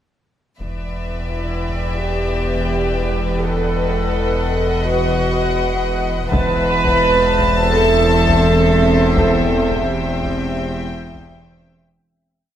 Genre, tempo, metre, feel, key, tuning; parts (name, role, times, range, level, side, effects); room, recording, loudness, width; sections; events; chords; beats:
cinematic, suspense film score; 84 BPM; 4/4; straight; E minor; A4 = 445 Hz
warm symphonic violin section; melody; 0.6-11.8 s; E5 to A5; -26 LUFS; left 5 dB
dark symphonic violin section; second line; 0.6-11.8 s; B4 to E5; -24 LUFS; left 1 dB
ethereal airy pad; sustained chords; 1.8-12.0 s; C4 to A5; -26 LUFS; left 1 dB; ensemble chorus, built-in reverb
rich studio cello section; bass; 0.6-11.8 s; E2; -23 LUFS; equal
warm symphonic double bass section; bass; 0.6-11.8 s; E1; -24 LUFS; right 2 dB
sub bass with octave; drone; 0.6-12.0 s; E1; -24 LUFS; equal
taiko ensemble; drums; 0.6-2.0, 6.3-11.8 s; -24 LUFS; equal
warm studio viola section; accompaniment; 1.3-11.3 s; E4 to B4; -19 LUFS; right 2 dB
moderate scoring stage reverb, RT60 2.0 s; -15 LUFS; side -10 dB against mid
0.6-12.0 A section
fade-out 9.2-12.0
0.6 Em7; 3.5 B7/E; 6.3 Amadd9/E; 9.2 C/E
| 0.60 1.32 2.03 2.75 | 3.46 4.17 4.89 5.60 | 6.32 7.03 7.75 8.46 | 9.17 9.89 10.60 11.32